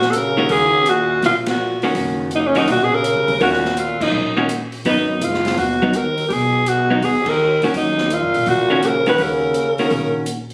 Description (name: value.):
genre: jazz, small-group swing and bop.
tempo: 166 BPM.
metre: 4/4.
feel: swing 65% on 8ths.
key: Eb minor.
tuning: A4 = 439 Hz.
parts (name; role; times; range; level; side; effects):
growling alto saxophone; melody; 0.0-10.2 s; Db4 to Cb5; -19 LUFS; equal; none.
mellow trombone; second line; 0.0-10.2 s; F2 to Eb3; -26 LUFS; equal; none.
upright bass; bass; 0.0-10.5 s; Gb1 to Bb2; -30 LUFS; equal; none.
open jazz drum kit; drums; 0.0-10.5 s; crash cymbal, hi-hat, kick drum, ride cymbal, snare drum; -31 LUFS; equal; none.
vintage hollow-body jazz guitar; accompaniment; 0.4-10.3 s; Eb3 to Gb4; -22 LUFS; equal; none.
room: moderate studio reverb, RT60 0.6 s.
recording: recorded on a phone in the room, studio reverb.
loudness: -18 LUFS.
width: mono.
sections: 0.0-10.5 A section.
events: band accent 1.4, 3.9, 7.2.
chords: 0.0 Ebm7; 4.9 Abm7; 7.7 Ebm7.